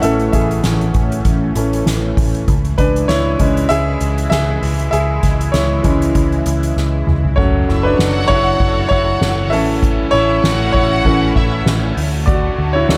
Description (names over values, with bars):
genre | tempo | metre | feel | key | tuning
piano-driven pop | 98 BPM | 4/4 | swing 56% on 16ths | F# minor | A4 = 444 Hz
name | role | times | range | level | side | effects
clear baby grand piano | accompaniment | 0.0-13.0 s | E3 to F#5 | -19 LUFS | equal | none
lush unison pad | sustained chords | 0.0-13.0 s | D3 to C#5 | -27 LUFS | equal | chorus, phaser
vintage muted picked electric bass | bass | 0.0-13.0 s | F#1 to D2 | -21 LUFS | equal | none
soft-mallet drum kit | drums | 0.0-13.0 s | crash cymbal, hi-hat, kick drum, ride cymbal, snare drum, toms | -21 LUFS | equal | none
warm studio violin section | second line | 7.7-11.6 s | E4 to F#5 | -25 LUFS | equal | tape echo
room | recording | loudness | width
light reverb, small room ambience | none | -15 LUFS | mono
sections
0.0-7.4 A section; 7.4-13.0 B section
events
grand piano solo 0.0-7.4, 7.4-13.0; drum fill 6.8-7.4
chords
0.0 A; 2.5 C#m; 7.4 F#m; 9.5 A; 12.0 D